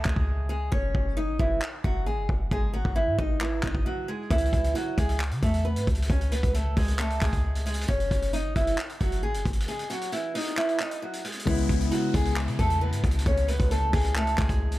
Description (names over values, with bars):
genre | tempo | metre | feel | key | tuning
hip hop, trap | 134 BPM | 4/4 | half-time | C# minor | A4 = 440 Hz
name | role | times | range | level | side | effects
picked old ladder-braced acoustic guitar | melody | 0.0-14.8 s | E3 to D#5 | -29 LUFS | right 1 dB | tape echo
clean 808-style bass | bass | 0.0-14.8 s | F#1 to C#3 | -27 LUFS | equal | none
vintage drum kit | drums | 0.1-14.8 s | handclaps, hi-hat, kick drum | -29 LUFS | equal | none
dark baby grand piano | accompaniment | 11.5-14.8 s | C#3 to E4 | -31 LUFS | left 5 dB | none
downlifter | sound effects | 11.5-14.8 s | none | -42 LUFS | left 1 dB | none
room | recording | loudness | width
small room ambience | none | -24 LUFS | side -16 dB against mid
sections
0.0-11.5 A section; 11.5-14.8 B section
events
break 0.0-4.3, 9.7-11.5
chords
0.0 C#5; 0.7 F#5; 2.5 G#5; 4.3 C#m7; 7.9 F#5; 9.7 G#5; 11.5 C#m7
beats
0.28 | 0.72 1.17 1.62 2.07 | 2.52 2.96 3.41 3.86 | 4.31 4.75 5.20 5.65 | 6.10 6.54 6.99 7.44 | 7.89 8.34 8.78 9.23 | 9.68 10.13 10.57 11.02 | 11.47 11.92 12.37 12.81 | 13.26 13.71 14.16 14.60